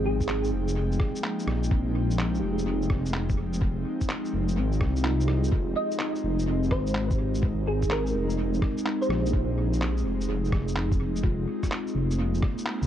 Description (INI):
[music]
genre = future garage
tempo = 126 BPM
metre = 4/4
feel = swing 66% on 16ths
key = F minor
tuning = A4 = 441 Hz
[part]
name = mellow tine electric piano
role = accompaniment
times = 0.0-12.9 s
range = Ab3 to Eb5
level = -34 LUFS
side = right 3 dB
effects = medium stereo tremolo, sidechain pumping, analog delay
[part]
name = airy breathy pad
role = sustained chords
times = 0.0-12.9 s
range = F3 to G5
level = -31 LUFS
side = left 2 dB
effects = chorus, sidechain pumping
[part]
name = dark detuned saw bass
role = bass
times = 0.0-12.9 s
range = F1 to C2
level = -27 LUFS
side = equal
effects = tube saturation, sidechain pumping
[part]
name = thumb-piano-like synth pluck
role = melody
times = 0.1-0.4, 5.8-9.5 s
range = Ab4 to Eb5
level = -32 LUFS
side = right 1 dB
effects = ensemble chorus, analog delay
[part]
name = electronic kick drum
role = drums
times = 0.2-12.6 s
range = none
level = -27 LUFS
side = equal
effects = none
[part]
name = electronic shaker, rim click and handclaps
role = drums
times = 0.2-12.9 s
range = none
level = -36 LUFS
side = equal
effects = overdrive, tape echo
[sound]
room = little or no reverb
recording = echo-heavy mix, cassette tape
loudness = -24 LUFS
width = side -10 dB against mid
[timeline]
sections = 0.0-12.9 A section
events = band accent 12.7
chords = 0.0 Fm7